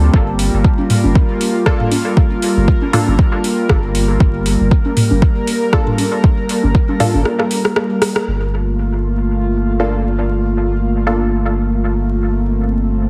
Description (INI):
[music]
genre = dub techno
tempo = 118 BPM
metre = 4/4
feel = swing 56% on 16ths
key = G minor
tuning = A4 = 440 Hz
[part]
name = airy breathy pad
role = sustained chords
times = 0.0-13.1 s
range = G3 to Bb4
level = -21 LUFS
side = equal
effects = chorus, sidechain pumping
[part]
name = soft dub sub bass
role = bass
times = 0.0-13.1 s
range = G1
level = -19 LUFS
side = equal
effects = sidechain pumping
[part]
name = bubbling stepped-filter texture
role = texture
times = 0.0-8.3 s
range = G3 to Bb4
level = -31 LUFS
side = equal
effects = chorus, built-in reverb, sidechain pumping
[part]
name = electronic kick drum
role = drums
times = 0.1-6.9 s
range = none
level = -15 LUFS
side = equal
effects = overdrive
[part]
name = deep house drum kit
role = drums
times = 0.4-8.2 s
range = hi-hat, rim click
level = -23 LUFS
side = equal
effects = overdrive, low-pass filter on hats, low-pass filter on snare, dub echo
[part]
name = electronic congas and toms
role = percussion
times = 0.8-7.2 s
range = none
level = -20 LUFS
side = equal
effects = sidechain pumping on perc, sidechain pumping on toms, dub echo
[part]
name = filtered dub chord stab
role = stabs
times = 1.7-11.2 s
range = Bb3 to A4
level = -25 LUFS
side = equal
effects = chorus, phaser, sidechain pumping, dub echo
[sound]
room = light reverb, digital ambience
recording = heavily compressed radio sound, vinyl crackle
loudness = -15 LUFS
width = mono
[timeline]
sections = 0.0-8.3 A section; 8.3-13.1 B section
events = break 7.3-8.3; drum fill 7.3-8.3; band accent 8.1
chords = 0.0 Gm9